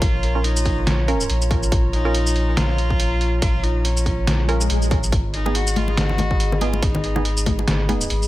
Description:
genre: deep dubstep.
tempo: 141 BPM.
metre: 4/4.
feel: swing 57% on 16ths, half-time.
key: unclear.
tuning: A4 = 436 Hz.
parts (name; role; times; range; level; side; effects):
warm cello; melody; 0.0-7.7 s; C#4 to F#4; -29 LUFS; left 1 dB; vintage 12-bit sampler grit, dub echo.
dark analog pad; sustained chords; 0.0-8.3 s; E#4 to B5; -28 LUFS; equal; chorus.
soft dub sub bass; bass; 0.0-8.3 s; G#1 to A#1; -21 LUFS; equal; none.
electronic kick drum; drums; 0.0-7.6 s; none; -21 LUFS; equal; studio reverb.
trip hop sampler-style drum kit; drums; 0.0-8.3 s; hi-hat, shaker, snare drum; -25 LUFS; equal; overdrive, studio reverb.
filtered dub chord stab; stabs; 0.4-8.0 s; B3 to A#4; -28 LUFS; right 4 dB; chorus, cassette tape, dub echo.
swell; sound effects; 4.4-5.1 s; none; -28 LUFS; left 2 dB; none.
congas; percussion; 5.5-8.0 s; none; -26 LUFS; left 4 dB; none.
room: digital ambience.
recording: none.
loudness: -17 LUFS.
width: side -16 dB against mid.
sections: 0.0-8.3 A section.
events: swell 4.4-5.1.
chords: 0.0 A#m; 5.1 G#m.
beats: | 0.02 0.44 0.87 1.29 | 1.72 2.15 2.57 3.00 | 3.42 3.85 4.27 4.70 | 5.12 5.55 5.97 6.40 | 6.83 7.25 7.68 8.10.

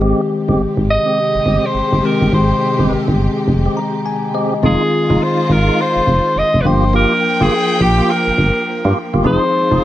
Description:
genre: R&B.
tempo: 104 BPM.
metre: 4/4.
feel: swing 63% on 16ths.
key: F dorian from 4.6 s.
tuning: A4 = 440 Hz.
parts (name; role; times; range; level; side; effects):
bell-like tine electric piano; accompaniment; 0.0-9.8 s; Eb3 to Bb5; -19 LUFS; left 3 dB; none.
warm studio string section; sustained chords; 0.0-9.8 s; C3 to G5; -22 LUFS; equal; none.
tonewheel organ; stabs; 0.0-9.8 s; Ab3 to Ab4; -22 LUFS; right 1 dB; overdrive, fast rotary speaker.
solid FM bass; bass; 0.0-9.8 s; F1 to G2; -15 LUFS; right 1 dB; none.
bright alto saxophone; melody; 0.9-9.8 s; G4 to Eb5; -17 LUFS; equal; none.
room: light reverb.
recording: nothing above 10.5 kHz.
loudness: -12 LUFS.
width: side -13 dB against mid.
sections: 0.0-4.6 A section; 4.6-9.8 B section.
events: tine electric piano fill 3.5-4.6; break 4.1-4.6.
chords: 0.0 Abmaj7; 4.6 Fm7; 6.7 Gm7; 9.2 Fm7.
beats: | 0.02 0.59 1.17 1.75 | 2.33 2.90 3.48 4.06 | 4.63 5.21 5.79 6.36 | 6.94 7.52 8.09 8.67 | 9.25 9.82.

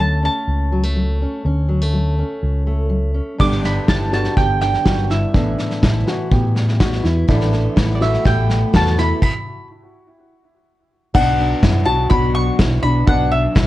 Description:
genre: indie folk with a building arrangement.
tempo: 124 BPM.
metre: 4/4.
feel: straight.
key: unclear.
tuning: A4 = 441 Hz.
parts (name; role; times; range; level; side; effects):
mandolin; melody; 0.0-13.7 s; D5 to D6; -21 LUFS; equal; none.
fingerpicked steel-string acoustic guitar; accompaniment; 0.0-7.3 s; D2 to G4; -23 LUFS; left 1 dB; none.
fingered electric bass; bass; 0.0-13.7 s; G1 to A2; -18 LUFS; equal; none.
dark upright piano; arpeggios; 3.4-13.7 s; D4 to G4; -24 LUFS; right 1 dB; tape echo.
vintage brush drum kit; drums; 3.4-13.7 s; crash cymbal, kick drum, snare drum; -18 LUFS; equal; none.
clear grand piano; accompaniment; 7.3-13.7 s; A1 to E5; -29 LUFS; right 2 dB; none.
picked steel-string acoustic guitar; accompaniment; 7.3-13.7 s; A2 to A4; -25 LUFS; left 3 dB; none.
room: light reverb.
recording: worn, warbling old tape, cassette tape, warbly pitch drift.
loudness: -15 LUFS.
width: side -15 dB against mid.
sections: 0.0-3.4 A section; 3.4-11.1 B section; 11.1-13.7 C section.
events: stop 9.2-11.1.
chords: 0.0 F#m; 3.4 G; 5.3 Asus2; 11.1 Bm.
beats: 0.47 0.96 | 1.45 1.94 2.42 2.91 | 3.40 3.88 4.37 4.86 | 5.34 5.83 6.31 6.80 | 7.28 7.76 8.25 8.73 | 9.22 9.70 10.18 10.67 | 11.15 11.63 12.11 12.60 | 13.08 13.56.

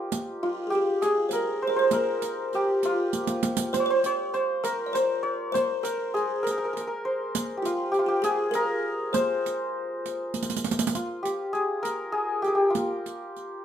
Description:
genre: Persian modal ensemble.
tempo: 66 BPM (dotted quarters).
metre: 6/8.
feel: straight.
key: C dastgah shur.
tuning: A4 = 440 Hz.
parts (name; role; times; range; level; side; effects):
santur; melody; 0.0-13.6 s; Eb4 to Db5+45c; -26 LUFS; equal; none.
riq; percussion; 0.1-13.4 s; none; -30 LUFS; right 4 dB; none.
buzzing kalimba; second line; 0.4-10.6 s; F4 to Db5+45c; -30 LUFS; equal; none.
room: moderate studio reverb, RT60 0.6 s.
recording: minimal, uncompressed stereo recording.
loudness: -24 LUFS.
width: side -9 dB against mid.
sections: 0.0-10.9 A section; 10.9-13.6 B section.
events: drum fill 3.1-3.7, 10.3-10.9.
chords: none.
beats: | 0.11 1.02 | 1.92 2.83 | 3.73 4.63 | 5.54 6.44 | 7.34 8.24 | 9.14 10.05 | 10.95 11.85 | 12.75.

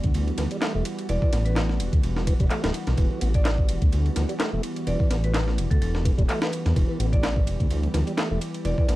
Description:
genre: breakbeat, breaks.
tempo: 127 BPM.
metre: 4/4.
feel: swing 55% on 16ths.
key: E minor.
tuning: A4 = 441 Hz.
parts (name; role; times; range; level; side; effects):
lush unison pad; sustained chords; 0.0-9.0 s; E3 to G4; -32 LUFS; right 1 dB; chorus, sidechain pumping.
dark detuned saw bass; bass; 0.0-9.0 s; D1 to E2; -24 LUFS; equal; none.
breakbeat sampler-style drum kit; drums; 0.0-9.0 s; kick drum, ride cymbal, snare drum; -25 LUFS; equal; none.
house drum kit; drums; 0.0-9.0 s; handclaps, hi-hat, ride cymbal; -35 LUFS; equal; none.
tonewheel organ; riff; 0.4-9.0 s; E3 to B3; -33 LUFS; equal; overdrive, fast rotary speaker, dub echo.
marimba with medium hard mallets; melody; 1.1-9.0 s; A4 to D5; -35 LUFS; right 1 dB; telephone sound, dub echo.
room: light reverb.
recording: dark, warm production.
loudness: -21 LUFS.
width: side -17 dB against mid.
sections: 0.0-9.0 A section.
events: none.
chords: 0.0 Em.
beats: 0.15 0.62 | 1.09 1.56 2.04 2.51 | 2.98 3.45 3.93 4.40 | 4.87 5.34 5.82 6.29 | 6.76 7.23 7.71 8.18 | 8.65.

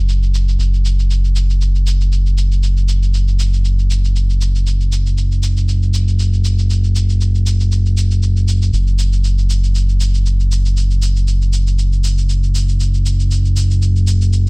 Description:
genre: afro house.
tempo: 118 BPM.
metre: 4/4.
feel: swing 55% on 16ths.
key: unclear.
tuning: A4 = 440 Hz.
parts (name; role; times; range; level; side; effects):
smooth gliding synth bass; bass; 0.0-14.5 s; F#1; -13 LUFS; equal; none.
cabasa; drums; 0.1-14.5 s; none; -29 LUFS; equal; low-pass filter on perc, studio reverb.
room: digital ambience.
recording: dry, gritty hardware recording.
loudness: -13 LUFS.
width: side -38 dB against mid.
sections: 0.0-14.5 A section.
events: none.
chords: none.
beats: 0.09 | 0.59 1.10 1.61 2.12 | 2.63 3.14 3.65 4.15 | 4.66 5.17 5.68 6.19 | 6.70 7.21 7.71 8.22 | 8.73 9.24 9.75 10.26 | 10.76 11.27 11.78 12.29 | 12.80 13.31 13.81 14.32.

